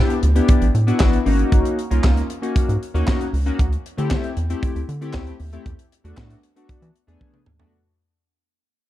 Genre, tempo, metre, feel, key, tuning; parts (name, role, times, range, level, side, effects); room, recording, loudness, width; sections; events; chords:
early-eighties boogie funk; 116 BPM; 4/4; straight; A4 = 440 Hz
chorused polysynth; accompaniment; 0.0-7.7 s; A3 to G#4; -23 LUFS; left 3 dB
tight funk drum kit; drums; 0.1-7.7 s; handclaps, hi-hat, kick drum, snare drum, toms; -19 LUFS; equal
rubbery square bass; bass; 0.2-7.6 s; G#1 to E3; -20 LUFS; equal
studio ambience; dark, warm production; -17 LUFS; side -14 dB against mid
0.0-7.7 A section
fade-out 0.0-7.7; drum fill 7.2-7.7
0.0 A9sus4; 1.3 G#9sus4; 3.6 D9sus4; 5.7 E9sus4